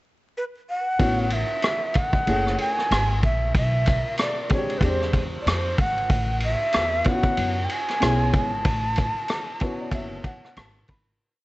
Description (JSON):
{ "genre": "hip hop, jazz-hop", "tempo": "94 BPM", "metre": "4/4", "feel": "swing 59% on 16ths", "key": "A major", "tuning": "A4 = 440 Hz", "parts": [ { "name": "breathy mellow shakuhachi", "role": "melody", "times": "0.4-10.6 s", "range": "B4 to A5", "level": "-26 LUFS", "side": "equal", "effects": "tape echo" }, { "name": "dark upright piano", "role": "accompaniment", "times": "1.0-11.2 s", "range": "G#3 to B5", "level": "-28 LUFS", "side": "left 1 dB", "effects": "none" }, { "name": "upright bass", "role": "bass", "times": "1.0-11.2 s", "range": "F#1 to F#2", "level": "-26 LUFS", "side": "equal", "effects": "none" }, { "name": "vintage drum kit", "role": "drums", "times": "1.0-11.1 s", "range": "hi-hat, kick drum, ride cymbal, rim click", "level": "-24 LUFS", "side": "equal", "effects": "vintage 12-bit sampler grit" } ], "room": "light reverb", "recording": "vinyl crackle, nothing above 8.0 kHz", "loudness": "-21 LUFS", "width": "side -19 dB against mid", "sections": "0.0-1.0 pickup bar; 1.0-11.2 A section", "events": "fade-out 8.7-11.2; upright piano fill 9.3-11.2", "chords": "0.0 N.C.; 1.0 A69; 2.3 F#m9; 3.5 Bm; 4.8 E7alt; 6.1 A69", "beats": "0.35 | 0.99 1.63 2.27 2.91 | 3.55 4.18 4.82 5.46 | 6.10 6.74 7.38 8.01 | 8.65 9.29 9.93 10.57" }